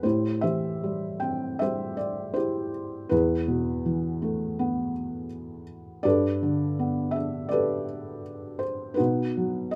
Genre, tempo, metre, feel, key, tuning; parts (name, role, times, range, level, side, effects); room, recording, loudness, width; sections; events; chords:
classical, lyrical solo piano; 81 BPM; 4/4; rubato; A dorian; A4 = 440 Hz
felt-muted upright piano; solo; 0.0-9.8 s; E2 to G5; -28 LUFS; equal
light reverb; close, detailed microphones; -27 LUFS; mono
0.0-9.8 A section
0.0 Am7; 3.1 Esus4; 6.0 Gadd9; 9.0 B